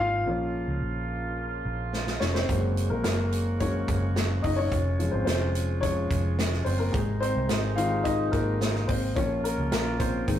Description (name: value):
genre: piano-driven pop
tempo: 108 BPM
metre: 4/4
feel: straight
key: Bb minor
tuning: A4 = 440 Hz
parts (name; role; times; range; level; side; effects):
- warm upright piano; accompaniment; 0.0-10.4 s; Eb3 to F5; -28 LUFS; left 2 dB; none
- warm woodwind section; sustained chords; 0.0-10.4 s; C3 to Gb4; -37 LUFS; right 5 dB; none
- vintage muted fingered electric bass; bass; 0.0-10.4 s; F1 to Db2; -29 LUFS; right 1 dB; none
- natural country drum kit; drums; 1.9-10.4 s; hi-hat, kick drum, snare drum; -30 LUFS; right 1 dB; none
room: moderate stone room reverb, RT60 0.9 s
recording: rough rehearsal-room recording, tube saturation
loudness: -24 LUFS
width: side -10 dB against mid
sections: 0.0-10.4 A section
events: upright piano solo 0.0-10.4; drum fill 1.9-2.5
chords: 0.3 Bbm; 2.5 Gbadd9; 4.7 Db/F; 6.9 Ab; 9.2 Bbm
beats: | 0.26 0.82 1.38 1.93 | 2.49 3.05 3.60 4.16 | 4.72 5.27 5.83 6.39 | 6.94 7.50 8.05 8.61 | 9.17 9.72 10.28